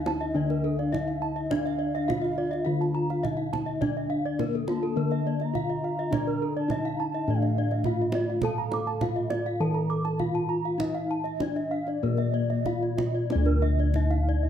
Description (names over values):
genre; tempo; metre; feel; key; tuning
Balinese gamelan; 93-104 BPM; 4/4; straight; D pelog; A4 = 441 Hz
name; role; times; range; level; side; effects
gamelan-type bronze metallophone; melody; 0.0-14.5 s; Bb3 to A4; -30 LUFS; left 1 dB; none
gamelan-type bronze metallophone; arpeggios; 0.0-14.4 s; A4 to D6; -35 LUFS; left 6 dB; none
gamelan-type bossed gongs; bass; 0.0-14.5 s; D2 to A4; -28 LUFS; left 1 dB; none
gamelan-type bronze metallophone; arpeggios; 0.1-14.5 s; F4 to Bb5; -34 LUFS; right 6 dB; none
kendang; percussion; 0.1-14.2 s; none; -35 LUFS; right 4 dB; none
hollow bass bansuri; second line; 0.3-13.2 s; D5 to Bb5; -38 LUFS; right 6 dB; none
room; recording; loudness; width
light reverb; close, detailed microphones; -25 LUFS; side -9 dB against mid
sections
0.0-13.3 A section; 13.3-14.5 B section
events
none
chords
none